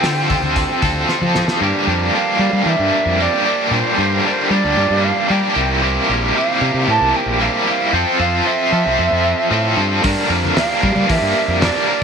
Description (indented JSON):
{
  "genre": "psychedelic rock",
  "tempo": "114 BPM",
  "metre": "4/4",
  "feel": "straight",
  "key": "G dorian",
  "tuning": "A4 = 440 Hz",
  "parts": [
    { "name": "concert flute", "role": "melody", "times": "0.0-12.0 s", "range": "C5 to A5", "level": "-20 LUFS", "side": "right 3 dB", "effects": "tape echo" },
    { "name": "hand-pumped harmonium", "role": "sustained chords", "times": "0.0-12.0 s", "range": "F3 to E5", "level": "-29 LUFS", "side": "right 12 dB", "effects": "none" },
    { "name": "cranked stack guitar", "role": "riff", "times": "0.0-12.0 s", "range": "G2 to Bb4", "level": "-16 LUFS", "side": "left 1 dB", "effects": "overdrive, tremolo" },
    { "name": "fuzz fingered electric bass", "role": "bass", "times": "0.0-11.7 s", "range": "Bb1 to G3", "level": "-20 LUFS", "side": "equal", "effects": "overdrive" },
    { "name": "cloth-damped thuddy drum kit", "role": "drums", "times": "0.0-1.6, 10.0-11.7 s", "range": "hi-hat, kick drum, snare drum", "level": "-22 LUFS", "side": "equal", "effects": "none" },
    { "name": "congas", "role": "percussion", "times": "0.3-1.5, 10.4-11.7 s", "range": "none", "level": "-30 LUFS", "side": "left 8 dB", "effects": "none" }
  ],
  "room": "light reverb, small room ambience",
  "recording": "1960s-style stereo with parts hard left and right",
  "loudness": "-14 LUFS",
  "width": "side -6 dB against mid",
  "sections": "0.0-1.6 A section; 1.6-12.0 B section",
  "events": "drum fill 1.1-1.6",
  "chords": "0.0 Fadd9; 1.6 Gm7; 5.6 C7sus4; 7.9 Fmaj7; 10.0 Gm7"
}